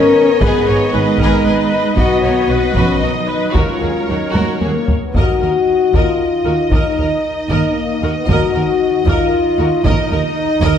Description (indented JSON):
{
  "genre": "cinematic, epic orchestral film score",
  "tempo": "115 BPM",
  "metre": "3/4",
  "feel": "straight",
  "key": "Eb minor",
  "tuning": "A4 = 440 Hz",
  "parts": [
    { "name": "warm symphonic violin section", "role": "melody", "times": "0.0-10.8 s", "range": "Db5 to Eb5", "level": "-26 LUFS", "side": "left 1 dB", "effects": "none" },
    { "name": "rich symphonic viola section", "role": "accompaniment", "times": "0.0-10.8 s", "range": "Bb4 to D#5", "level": "-24 LUFS", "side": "right 1 dB", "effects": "none" },
    { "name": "dark French horn section", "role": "sustained chords", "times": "0.0-10.8 s", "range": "Bb3 to Bb4", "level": "-16 LUFS", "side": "left 4 dB", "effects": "none" },
    { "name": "dark trombone section", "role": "sustained chords", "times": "0.0-10.8 s", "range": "D#3 to Eb4", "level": "-24 LUFS", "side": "right 3 dB", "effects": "none" },
    { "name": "rich symphonic cello section", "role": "bass", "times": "0.0-10.7 s", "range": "Eb2 to Db4", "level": "-22 LUFS", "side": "right 2 dB", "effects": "none" },
    { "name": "warm chamber violin section", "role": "second line", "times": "0.4-10.8 s", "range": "F#4 to Eb5", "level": "-25 LUFS", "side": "left 2 dB", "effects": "none" },
    { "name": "warm symphonic double bass section", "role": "bass", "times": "0.4-10.7 s", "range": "Ab1 to Eb2", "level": "-21 LUFS", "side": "right 3 dB", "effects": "none" },
    { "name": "taiko ensemble", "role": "drums", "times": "0.4-10.8 s", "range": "none", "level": "-19 LUFS", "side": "equal", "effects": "none" }
  ],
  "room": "wet scoring stage reverb, RT60 1.7 s",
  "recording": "none",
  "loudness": "-12 LUFS",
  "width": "side -8 dB against mid",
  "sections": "0.0-5.1 A section; 5.1-10.8 B section",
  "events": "drum fill 4.3-5.1",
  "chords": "0.0 Abm; 2.0 B; 3.5 Ebm7; 5.1 Ebm"
}